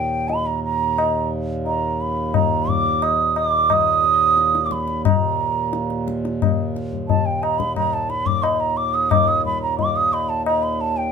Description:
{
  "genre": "indian classical, Hindustani",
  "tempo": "89 BPM",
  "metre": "4/4",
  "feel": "straight",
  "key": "unclear",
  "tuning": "A4 = 443 Hz",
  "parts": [
    { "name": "hollow bansuri", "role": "melody", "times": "0.0-11.1 s", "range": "G5 to Eb6", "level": "-19 LUFS", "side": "right 5 dB", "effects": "none" },
    { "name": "pedal harmonium", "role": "drone", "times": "0.0-11.1 s", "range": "Eb2 to Bb2", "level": "-26 LUFS", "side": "right 2 dB", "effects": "none" },
    { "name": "tabla", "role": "percussion", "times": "0.3-10.7 s", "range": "none", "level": "-22 LUFS", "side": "left 8 dB", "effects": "none" }
  ],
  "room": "wet studio reverb, RT60 0.6 s",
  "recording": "minimal, uncompressed stereo recording",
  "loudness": "-18 LUFS",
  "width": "side -6 dB against mid",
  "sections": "0.0-11.1 A section",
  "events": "none",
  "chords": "none"
}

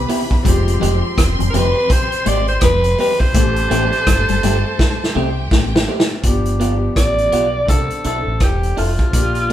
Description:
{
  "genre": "lovers rock reggae",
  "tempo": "83 BPM",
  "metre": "4/4",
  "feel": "swing 60% on 16ths",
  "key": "C major",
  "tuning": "A4 = 440 Hz",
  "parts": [
    { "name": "warm studio violin section", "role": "second line", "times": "0.0-6.2 s", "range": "C4 to C6", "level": "-26 LUFS", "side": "equal", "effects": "none" },
    { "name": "clear concert grand piano", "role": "accompaniment", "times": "0.0-9.5 s", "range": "D3 to A4", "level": "-26 LUFS", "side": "left 2 dB", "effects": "tape echo" },
    { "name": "deep dub fingered electric bass", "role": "bass", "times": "0.0-9.5 s", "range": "E1 to C2", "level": "-20 LUFS", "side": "equal", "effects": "none" },
    { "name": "electric guitar through a small old amp", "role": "stabs", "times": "0.1-9.5 s", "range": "Ab3 to A4", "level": "-24 LUFS", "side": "right 2 dB", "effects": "none" },
    { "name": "vintage drum kit", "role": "drums", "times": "0.1-9.5 s", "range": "hi-hat, kick drum, rim click, snare drum", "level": "-17 LUFS", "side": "equal", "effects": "none" },
    { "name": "electric guitar at the edge of break-up", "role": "riff", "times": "0.4-5.7 s", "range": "E2 to C3", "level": "-25 LUFS", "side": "left 5 dB", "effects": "tape echo" },
    { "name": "raspy alto saxophone", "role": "melody", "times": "1.5-9.5 s", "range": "F4 to D5", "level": "-19 LUFS", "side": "equal", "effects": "none" }
  ],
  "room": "moderate stone room reverb, RT60 1.2 s",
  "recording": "band playing live in one room",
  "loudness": "-14 LUFS",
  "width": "side -12 dB against mid",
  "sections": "0.0-6.2 A section; 6.2-9.5 B section",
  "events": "drum fill 4.8-6.2",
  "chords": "0.4 Fmadd9; 3.3 Am7; 6.2 G7; 7.7 C69"
}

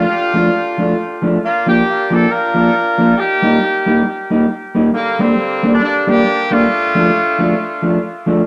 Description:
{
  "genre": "ska",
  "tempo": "136 BPM",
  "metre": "4/4",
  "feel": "swing 58% on 8ths",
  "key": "unclear",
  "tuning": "A4 = 438 Hz",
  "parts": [
    { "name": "warm horn section", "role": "melody", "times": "0.0-8.0 s", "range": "D3 to Bb4", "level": "-18 LUFS", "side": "equal", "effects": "dub echo" },
    { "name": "mellow electric guitar", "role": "accompaniment", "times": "0.0-8.4 s", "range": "F3 to Eb4", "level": "-17 LUFS", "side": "equal", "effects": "none" }
  ],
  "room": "moderate studio reverb, RT60 0.5 s",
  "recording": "none",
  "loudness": "-15 LUFS",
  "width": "mono",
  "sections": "0.0-8.5 A section",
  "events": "none",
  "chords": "0.0 Dm; 1.4 Bb; 3.2 Eb; 4.9 Gm; 6.7 Dm"
}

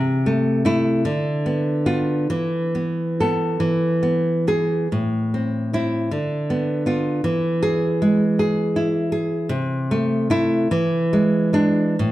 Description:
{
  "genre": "romantic piece for solo classical guitar",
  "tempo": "44-55 BPM (dotted quarters)",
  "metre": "6/8",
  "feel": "rubato",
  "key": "unclear",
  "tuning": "A4 = 444 Hz",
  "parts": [
    { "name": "nylon-string guitar", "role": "solo", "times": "0.0-12.1 s", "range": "A2 to A4", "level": "-18 LUFS", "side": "equal", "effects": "none" }
  ],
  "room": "wet recital hall reverb, RT60 1.4 s",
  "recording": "dark, warm production",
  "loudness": "-18 LUFS",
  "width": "side -15 dB against mid",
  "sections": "0.0-12.1 A section",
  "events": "none",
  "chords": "0.0 Am/C; 1.1 Bdim/D; 2.3 Esus4; 3.6 E; 4.9 Am; 6.1 Bdim/D; 7.2 E; 9.5 Am/C; 10.7 E7"
}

